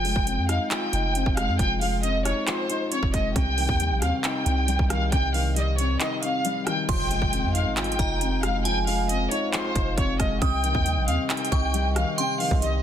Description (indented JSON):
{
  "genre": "hip hop, trap",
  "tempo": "136 BPM",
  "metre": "4/4",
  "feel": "half-time",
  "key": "F minor",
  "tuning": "A4 = 445 Hz",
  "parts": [
    { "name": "warm studio violin section", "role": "melody", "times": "0.0-12.8 s", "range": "C5 to G5", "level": "-27 LUFS", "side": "equal", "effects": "low-pass filter" },
    { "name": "dark grand piano", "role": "accompaniment", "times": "0.0-12.8 s", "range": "C3 to F4", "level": "-29 LUFS", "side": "left 4 dB", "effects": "low-pass filter" },
    { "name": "long sustained 808-style bass", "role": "bass", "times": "0.0-12.8 s", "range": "F1 to F2", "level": "-26 LUFS", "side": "right 1 dB", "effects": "none" },
    { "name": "trap drum kit", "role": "drums", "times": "0.0-12.7 s", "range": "crash cymbal, handclaps, hi-hat, kick drum, rim click", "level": "-28 LUFS", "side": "right 1 dB", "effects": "overdrive" },
    { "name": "glassy synth bell", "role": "second line", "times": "6.9-12.6 s", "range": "Ab5 to Eb6", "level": "-33 LUFS", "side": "right 4 dB", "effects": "chorus, phaser, digital delay" },
    { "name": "dark French horn section", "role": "sustained chords", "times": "6.9-12.8 s", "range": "C3 to F5", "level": "-37 LUFS", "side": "right 1 dB", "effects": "none" },
    { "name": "impact", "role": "sound effects", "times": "6.9-8.7 s", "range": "none", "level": "-35 LUFS", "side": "right 1 dB", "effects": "none" }
  ],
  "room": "light reverb, digital ambience",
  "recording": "dense, heavily limited modern master",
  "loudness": "-22 LUFS",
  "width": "side -10 dB against mid",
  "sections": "0.0-6.9 A section; 6.9-12.8 B section",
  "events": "break 6.0-6.9; impact 6.9-8.7",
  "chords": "0.0 Fm7; 3.4 Cm; 6.9 Fm7; 10.4 Cm",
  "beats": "0.27 0.71 1.15 | 1.59 2.03 2.48 2.92 | 3.36 3.80 4.24 4.68 | 5.12 5.56 6.00 6.45 | 6.89 7.33 7.77 8.21 | 8.65 9.09 9.53 9.97 | 10.42 10.86 11.30 11.74 | 12.18 12.62"
}